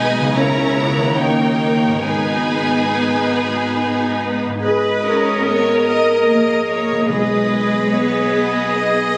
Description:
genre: classical, slow romantic movement for symphony orchestra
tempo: 64-78 BPM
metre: 3/4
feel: rubato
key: G# minor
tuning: A4 = 440 Hz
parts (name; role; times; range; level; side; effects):
- rich symphonic violin section; melody; 0.0-9.2 s; B4 to A#5; -29 LUFS; equal; none
- bright symphonic violin section; second line; 0.0-9.2 s; G#4 to D#5; -25 LUFS; equal; none
- clear symphonic viola section; accompaniment; 0.0-9.2 s; G#3 to B4; -22 LUFS; equal; none
- dark French horn section; sustained chords; 0.0-7.4 s; B3 to B4; -26 LUFS; equal; none
- concert harp; arpeggios; 0.0-9.2 s; G#2 to C#5; -30 LUFS; equal; none
- clear symphonic double bass section; bass; 0.0-9.2 s; G#1 to D#2; -30 LUFS; equal; none
- rich symphonic cello section; bass; 0.0-9.1 s; G#2 to C#4; -25 LUFS; equal; none
- clear oboe; second line; 4.6-9.2 s; D#5; -24 LUFS; equal; none
- warm clarinet; second line; 4.7-9.2 s; G#4; -26 LUFS; equal; none
- timpani; percussion; 7.1-8.3 s; B2; -32 LUFS; equal; none
room: wet concert hall reverb, RT60 2.2 s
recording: recorded on a phone in the room, studio reverb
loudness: -17 LUFS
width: mono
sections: 0.0-4.6 A section; 4.6-9.2 B section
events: none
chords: 0.4 A#dim/C#; 1.1 D#7; 2.0 G#m; 7.1 G#m/B

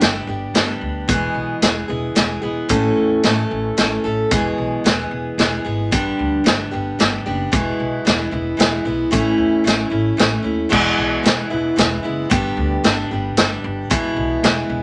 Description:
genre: folk rock and heartland rock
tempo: 112 BPM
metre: 3/4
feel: straight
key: E major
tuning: A4 = 440 Hz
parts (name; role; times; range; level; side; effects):
- picked steel-string acoustic guitar; accompaniment; 0.0-14.8 s; E2 to A4; -22 LUFS; equal; none
- upright bass; bass; 0.0-14.8 s; E1 to E2; -28 LUFS; equal; none
- vintage drum kit; drums; 0.0-14.6 s; crash cymbal, hi-hat, kick drum, snare drum; -19 LUFS; equal; none
room: light reverb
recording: nothing above 10.9 kHz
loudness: -19 LUFS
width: mono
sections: 0.0-10.7 A section; 10.7-14.8 B section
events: none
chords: 0.0 G; 1.1 E; 2.7 A; 4.3 E; 5.9 G; 7.5 E; 9.1 A; 10.7 E; 12.3 G; 13.9 E

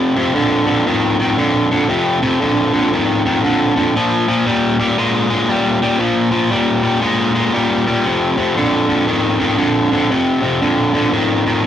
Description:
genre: blues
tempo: 117 BPM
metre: 4/4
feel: swing 63% on 8ths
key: unclear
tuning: A4 = 439 Hz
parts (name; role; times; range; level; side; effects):
- cranked stack guitar; solo; 0.0-11.7 s; F2 to Ab3; -13 LUFS; equal; overdrive
room: moderate small room reverb, RT60 0.5 s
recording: rough rehearsal-room recording, tube saturation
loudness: -13 LUFS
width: side -10 dB against mid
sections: 0.0-11.7 A section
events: none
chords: 0.0 F5; 4.0 Bb5; 8.1 F5

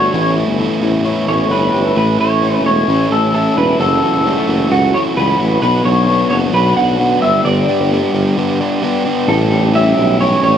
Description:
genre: indie pop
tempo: 131 BPM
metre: 4/4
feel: straight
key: unclear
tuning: A4 = 438 Hz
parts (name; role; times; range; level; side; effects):
- electric guitar through a small old amp; melody; 0.0-10.6 s; F#4 to F#5; -16 LUFS; equal; lush chorus
- crunchy overdriven guitar; accompaniment; 0.0-10.6 s; F#2 to G4; -19 LUFS; right 5 dB; none
- electric guitar through a small old amp; arpeggios; 0.0-10.6 s; F#2 to C#5; -18 LUFS; left 4 dB; analog delay
- warm tuba; bass; 0.0-10.6 s; E1 to C#2; -17 LUFS; equal; none
room: light reverb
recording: none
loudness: -12 LUFS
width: side -9 dB against mid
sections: 0.0-2.0 A section; 2.0-9.3 B section; 9.3-10.6 C section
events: none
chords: 0.1 Aadd9; 2.0 A; 3.8 F#m7; 5.6 Bm; 7.2 G; 9.3 A7

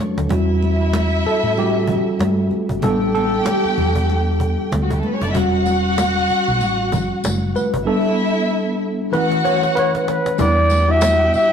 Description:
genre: lush 1970s-style soul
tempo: 95 BPM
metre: 4/4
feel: swing 58% on 16ths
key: E dorian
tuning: A4 = 435 Hz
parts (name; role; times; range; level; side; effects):
- tine electric piano; accompaniment; 0.0-11.5 s; E3 to C#5; -19 LUFS; equal; medium stereo tremolo
- cajon; drums; 0.0-11.4 s; none; -27 LUFS; right 1 dB; none
- hollow-body short-scale fingered electric bass; bass; 0.2-11.4 s; E1 to A2; -21 LUFS; equal; none
- warm studio violin section; second line; 0.3-11.5 s; G3 to G5; -23 LUFS; left 1 dB; tape echo
- congas; percussion; 0.3-11.2 s; none; -27 LUFS; right 1 dB; none
- tambourine; percussion; 5.3-11.5 s; none; -35 LUFS; left 4 dB; none
- warm flugelhorn; melody; 9.8-11.5 s; B4 to E5; -16 LUFS; equal; none
room: moderate stone room reverb, RT60 1.2 s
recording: rough rehearsal-room recording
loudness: -16 LUFS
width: side -7 dB against mid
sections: 0.3-10.4 A section; 10.4-11.5 B section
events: drum fill 0.0-0.3, 9.1-10.4; tine electric piano solo 0.3-10.4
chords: 0.3 Em69; 2.8 A9sus4; 5.3 Em69; 7.9 A9sus4; 9.1 B7sus4; 10.4 Em7

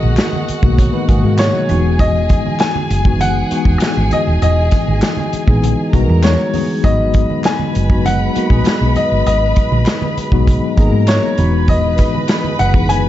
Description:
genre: lush 1970s-style soul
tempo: 99 BPM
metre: 4/4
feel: straight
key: G# minor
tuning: A4 = 440 Hz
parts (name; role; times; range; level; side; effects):
- warm grand piano; melody; 0.0-13.1 s; C#5 to G#5; -21 LUFS; left 1 dB; none
- warm symphonic violin section; second line; 0.0-13.1 s; F#4 to B5; -24 LUFS; equal; tape echo
- mellow tine electric piano; accompaniment; 0.0-13.1 s; B2 to G#4; -19 LUFS; left 4 dB; medium stereo tremolo
- mellow French horn section; sustained chords; 0.0-13.1 s; E3 to D#5; -29 LUFS; equal; none
- hollow-body short-scale fingered electric bass; bass; 0.0-13.1 s; D#1 to G#2; -16 LUFS; equal; none
- congas; percussion; 0.0-13.1 s; none; -26 LUFS; right 6 dB; none
- vintage drum kit; drums; 0.2-13.0 s; hi-hat, kick drum, snare drum; -16 LUFS; equal; none
- group handclap; percussion; 0.2-12.4 s; none; -32 LUFS; left 1 dB; none
- semi-hollow electric guitar; riff; 0.8-1.8, 8.0-9.4 s; F#3 to C#5; -25 LUFS; right 6 dB; spring reverb
room: light reverb, small room reverb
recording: dark, warm production, nothing above 7.7 kHz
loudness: -12 LUFS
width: side -13 dB against mid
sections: 0.0-13.1 A section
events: none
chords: 0.0 G#m9; 1.7 Emaj9; 6.8 G#m9; 11.4 Emaj9

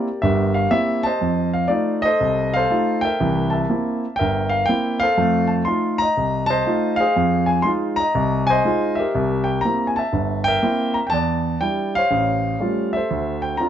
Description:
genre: solo jazz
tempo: 121 BPM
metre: 4/4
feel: swing 68% on 8ths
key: unclear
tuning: A4 = 441 Hz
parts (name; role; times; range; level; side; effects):
- warm grand piano; solo; 0.0-13.7 s; G1 to C6; -18 LUFS; equal; none
room: moderate studio reverb, RT60 0.9 s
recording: nothing above 7.9 kHz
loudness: -18 LUFS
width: side -10 dB against mid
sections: 0.0-13.7 A section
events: none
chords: 0.0 C7; 1.2 F7; 3.2 C7; 5.2 F7; 7.2 Fm7; 9.1 C7; 11.1 Fmaj13/E; 12.1 A7alt; 13.1 Dm7

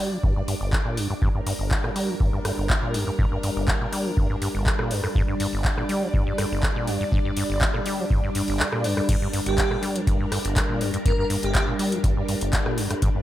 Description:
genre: acid house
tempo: 122 BPM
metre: 4/4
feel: straight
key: G minor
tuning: A4 = 442 Hz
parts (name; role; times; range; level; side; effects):
- string machine, full ensemble; sustained chords; 0.0-13.2 s; G3 to D5; -29 LUFS; equal; ensemble chorus, sidechain pumping
- deep acid bass; riff; 0.0-13.2 s; G1 to G3; -27 LUFS; equal; tube saturation, cassette tape, sidechain pumping
- electronic kick drum; drums; 0.2-13.1 s; none; -24 LUFS; equal; none
- booming analog drum machine; drums; 0.5-13.1 s; crash cymbal, handclaps, hi-hat, rim click; -28 LUFS; equal; none
- airy dreamy lead; melody; 9.5-11.6 s; G4 to Bb4; -30 LUFS; right 2 dB; chorus, cassette tape, tape echo
room: light reverb, digital ambience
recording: none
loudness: -21 LUFS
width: side -13 dB against mid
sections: 0.0-13.2 A section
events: kick drops out 8.6-9.1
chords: 0.0 Gm

